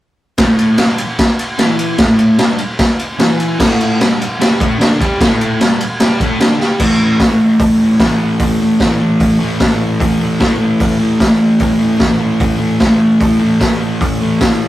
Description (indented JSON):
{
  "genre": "garage rock duo or trio",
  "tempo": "150 BPM",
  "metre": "4/4",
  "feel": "straight",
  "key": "unclear",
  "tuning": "A4 = 443 Hz",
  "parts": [
    { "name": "fuzz guitar", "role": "riff", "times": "0.4-14.7 s", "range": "G2 to G4", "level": "-13 LUFS", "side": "equal", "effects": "distortion" },
    { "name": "raw garage drum kit", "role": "drums", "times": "0.4-14.5 s", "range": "crash cymbal, hi-hat, kick drum, ride cymbal, snare drum", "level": "-13 LUFS", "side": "equal", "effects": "none" }
  ],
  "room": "light reverb",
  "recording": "rough rehearsal-room recording, warm saturation",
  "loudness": "-10 LUFS",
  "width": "side -15 dB against mid",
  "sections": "0.4-6.8 A section; 6.8-14.7 B section",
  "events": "drum fill 6.6",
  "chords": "0.4 A5"
}